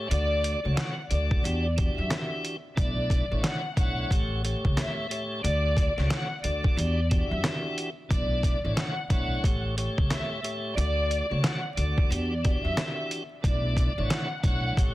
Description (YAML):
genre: hip hop, boom-bap hip-hop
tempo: 90 BPM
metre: 4/4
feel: swing 62% on 16ths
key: B minor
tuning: A4 = 440 Hz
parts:
  - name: tonewheel organ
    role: accompaniment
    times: 0.0-14.9 s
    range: A2 to D5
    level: -33 LUFS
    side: equal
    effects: slow rotary speaker, high-pass filter, low-pass filter
  - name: rich studio violin section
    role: melody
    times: 0.1-14.9 s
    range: D5 to F#5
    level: -33 LUFS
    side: left 1 dB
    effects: high-pass filter, low-pass filter
  - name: upright bass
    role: bass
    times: 0.1-14.9 s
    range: A1 to F#2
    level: -28 LUFS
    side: equal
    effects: none
  - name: trip hop sampler-style drum kit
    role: drums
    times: 0.1-14.9 s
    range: handclaps, hi-hat, kick drum, snare drum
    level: -27 LUFS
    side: equal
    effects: none
room: little or no reverb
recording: dense, heavily limited modern master, vinyl crackle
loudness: -25 LUFS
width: side -16 dB against mid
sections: 0.0-14.9 A section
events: none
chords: 0.1 Dmaj7; 1.4 Em9; 2.8 Bm11; 4.1 A7; 5.4 Dmaj7; 6.8 Em9; 8.1 Bm11; 9.4 A7; 10.8 Dmaj7; 12.1 Em9; 13.4 Bm11